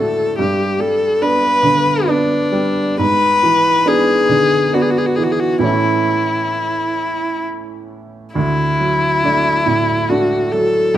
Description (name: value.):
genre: classical, romantic duo for viola and grand piano.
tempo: 68 BPM.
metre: 3/4.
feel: uneven beats, rubato.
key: D major.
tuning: A4 = 439 Hz.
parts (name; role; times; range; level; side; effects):
clear viola; melody; 0.0-11.0 s; D4 to B4; -15 LUFS; left 2 dB; none.
bright baby grand piano; accompaniment; 0.0-11.0 s; D2 to F#4; -18 LUFS; right 3 dB; none.
room: moderate recital hall reverb, RT60 1.6 s.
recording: close, detailed microphones.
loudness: -13 LUFS.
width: side -12 dB against mid.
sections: 0.0-11.0 A section.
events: none.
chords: 0.4 G; 3.0 E7/G#; 5.6 A; 8.4 D.